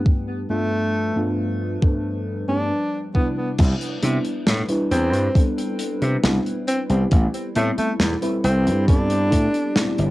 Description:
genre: vaporwave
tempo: 68 BPM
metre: 4/4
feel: straight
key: unclear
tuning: A4 = 442 Hz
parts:
  - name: mellow FM electric piano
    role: accompaniment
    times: 0.0-10.1 s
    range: G2 to B4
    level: -25 LUFS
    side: left 1 dB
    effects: wide subtle chorus, cassette tape, tape echo
  - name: warbly tape-like pad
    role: sustained chords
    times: 0.0-10.1 s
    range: F3 to B4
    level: -34 LUFS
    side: right 1 dB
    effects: chorus, built-in reverb, cassette tape
  - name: electronic kick drum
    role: drums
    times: 0.1-9.5 s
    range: none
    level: -17 LUFS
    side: equal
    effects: overdrive, cassette tape
  - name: clear alto saxophone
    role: melody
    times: 0.5-10.1 s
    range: A3 to D4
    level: -24 LUFS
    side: equal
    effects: vintage 12-bit sampler grit, cassette tape, tape echo
  - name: gritty slap bass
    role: bass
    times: 3.6-10.1 s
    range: G1 to C3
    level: -21 LUFS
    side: equal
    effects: overdrive
  - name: modern studio drum kit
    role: drums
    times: 3.6-10.1 s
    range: crash cymbal, hi-hat, snare drum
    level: -25 LUFS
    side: equal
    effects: cassette tape
room: light reverb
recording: home recording on cassette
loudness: -18 LUFS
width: side -18 dB against mid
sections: 0.0-3.6 A section; 3.6-10.1 B section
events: none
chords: 0.1 G7; 3.6 Cmaj7; 7.1 Am7

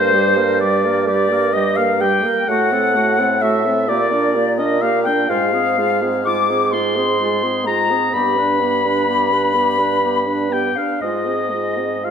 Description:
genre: classical, slow romantic movement for wind quintet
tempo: 42 BPM (dotted quarters)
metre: 6/8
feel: rubato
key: unclear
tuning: A4 = 438 Hz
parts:
  - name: hollow concert flute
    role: melody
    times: 0.0-12.1 s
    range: C5 to D6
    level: -20 LUFS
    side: left 5 dB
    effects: none
  - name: warm oboe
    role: second line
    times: 0.0-12.1 s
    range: C5 to D6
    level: -20 LUFS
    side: left 2 dB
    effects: none
  - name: warm French horn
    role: accompaniment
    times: 0.0-12.1 s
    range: G3 to D4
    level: -24 LUFS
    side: right 2 dB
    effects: none
  - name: warm clarinet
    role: accompaniment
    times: 0.0-12.1 s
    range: F4 to B4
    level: -25 LUFS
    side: right 6 dB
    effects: none
  - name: warm bassoon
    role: bass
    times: 0.0-12.1 s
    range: G2 to Bb2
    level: -21 LUFS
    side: right 3 dB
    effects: none
room: wet recital hall reverb, RT60 1.4 s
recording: none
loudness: -15 LUFS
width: side -7 dB against mid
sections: 0.0-12.1 A section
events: none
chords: 0.0 Gm; 2.5 F#dim/A; 3.9 Gm/Bb; 5.3 Fm/Ab; 8.1 G; 11.0 Fm/Ab

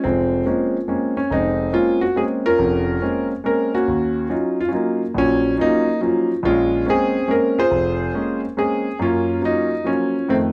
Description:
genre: jazz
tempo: 141 BPM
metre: 3/4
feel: swing 66% on 8ths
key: Bb minor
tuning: A4 = 439 Hz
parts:
  - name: warm concert grand piano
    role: solo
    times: 0.0-10.5 s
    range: F1 to C5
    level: -20 LUFS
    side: equal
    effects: none
room: wet studio reverb, RT60 0.5 s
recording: none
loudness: -20 LUFS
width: mono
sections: 0.0-10.5 A section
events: none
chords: 0.0 Bbm9; 3.9 Ebm9; 6.4 Bbm9; 9.0 Gbmaj7

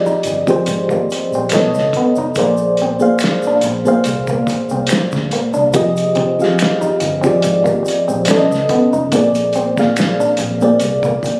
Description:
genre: R&B, neo-soul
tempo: 71 BPM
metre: 4/4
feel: swing 54% on 16ths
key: unclear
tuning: A4 = 440 Hz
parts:
  - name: FM electric piano with tremolo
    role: accompaniment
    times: 0.0-11.4 s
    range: Bb2 to F5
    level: -17 LUFS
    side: equal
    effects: none
  - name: electric guitar through a small old amp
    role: second line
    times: 0.1-11.3 s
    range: Bb3 to Eb4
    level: -23 LUFS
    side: equal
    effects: none
  - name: vintage muted fingered electric bass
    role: bass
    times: 0.1-11.2 s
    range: F1 to D2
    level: -26 LUFS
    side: equal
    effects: none
  - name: egg shaker and finger snaps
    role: percussion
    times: 0.1-11.4 s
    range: none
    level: -33 LUFS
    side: equal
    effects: none
  - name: cloth-damped thuddy drum kit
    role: drums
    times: 0.2-11.4 s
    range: hi-hat, kick drum, snare drum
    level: -23 LUFS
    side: equal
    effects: none
room: light reverb, studio reverb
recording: recorded on a phone in the room, compression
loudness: -15 LUFS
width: mono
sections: 0.0-11.4 A section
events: none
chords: 0.0 Fm9; 1.5 B9; 2.4 Bb9; 5.7 Fm9; 8.3 B9; 9.1 Bb9

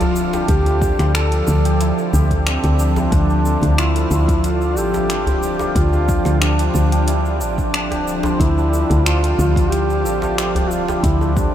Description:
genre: organic downtempo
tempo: 91 BPM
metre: 4/4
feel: straight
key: D minor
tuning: A4 = 442 Hz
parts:
  - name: mellow duduk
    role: melody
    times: 0.0-11.5 s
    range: C4 to A4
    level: -22 LUFS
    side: equal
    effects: analog delay
  - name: pedal harmonium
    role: accompaniment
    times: 0.0-11.5 s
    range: D3 to F4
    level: -26 LUFS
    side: right 1 dB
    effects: sidechain pumping, diffuse ambient delay
  - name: ethereal airy pad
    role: sustained chords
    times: 0.0-11.5 s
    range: F3 to A5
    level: -24 LUFS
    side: equal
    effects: ensemble chorus, built-in reverb, sidechain pumping
  - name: santur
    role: arpeggios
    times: 0.0-11.5 s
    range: A3 to D5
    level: -27 LUFS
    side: right 1 dB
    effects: diffuse ambient delay
  - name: woody FM bass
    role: bass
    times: 0.0-11.5 s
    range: D1 to D2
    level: -18 LUFS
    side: equal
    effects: none
  - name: deep house drum kit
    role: drums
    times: 0.0-11.5 s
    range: finger snaps, hi-hat, shaker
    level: -28 LUFS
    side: left 1 dB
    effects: overdrive
  - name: djembe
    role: percussion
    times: 0.0-11.3 s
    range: none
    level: -26 LUFS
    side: equal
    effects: none
  - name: electronic kick drum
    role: drums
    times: 0.5-11.5 s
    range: none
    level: -19 LUFS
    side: equal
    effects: overdrive
room: moderate huge ambient reverb, RT60 7.7 s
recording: dreamy mix soaked in reverb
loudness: -15 LUFS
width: side -10 dB against mid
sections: 0.0-11.5 A section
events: none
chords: 0.0 Dm

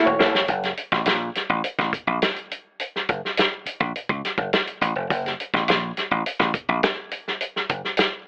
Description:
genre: funk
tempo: 104 BPM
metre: 4/4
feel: straight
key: unclear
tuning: A4 = 440 Hz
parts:
  - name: overdriven reed electric piano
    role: stabs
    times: 0.0-0.5 s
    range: A3 to C#5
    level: -21 LUFS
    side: right 1 dB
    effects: fast tremolo
  - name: dry thumbed slap bass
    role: bass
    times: 0.1-7.8 s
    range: D#1 to C#2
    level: -22 LUFS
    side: equal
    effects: none
  - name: warm soul drum kit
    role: drums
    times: 0.2-8.1 s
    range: hi-hat, kick drum, snare drum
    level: -22 LUFS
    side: equal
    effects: none
room: light reverb, studio reverb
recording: telephone sound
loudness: -21 LUFS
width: side -35 dB against mid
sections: 0.5-8.3 A section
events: drum fill 0.0-0.5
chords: 0.5 F#

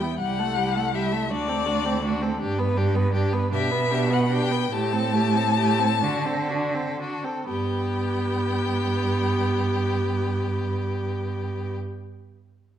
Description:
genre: classical, slow romantic movement for string quartet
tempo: 39-55 BPM (dotted quarters)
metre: 6/8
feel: rubato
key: G major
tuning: A4 = 439 Hz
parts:
  - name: rich violin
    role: melody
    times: 0.0-11.7 s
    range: D5 to A5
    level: -28 LUFS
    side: left 9 dB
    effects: none
  - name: rich violin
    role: second line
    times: 0.0-11.7 s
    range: E4 to B4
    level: -29 LUFS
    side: left 2 dB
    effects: none
  - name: clear viola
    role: accompaniment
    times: 0.0-11.7 s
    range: G3 to D4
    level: -29 LUFS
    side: right 1 dB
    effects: none
  - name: rich cello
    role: bass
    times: 0.0-11.7 s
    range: C2 to D3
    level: -26 LUFS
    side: right 3 dB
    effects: none
room: moderate recital hall reverb, RT60 1.4 s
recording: dark, warm production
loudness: -22 LUFS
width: side -10 dB against mid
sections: 0.0-7.5 A section; 7.5-12.8 B section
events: slowing down 1.3-7.5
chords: 0.2 Am7/C; 1.3 D7; 2.4 G; 3.5 G/B; 4.7 Am7; 6.0 D7; 7.5 G

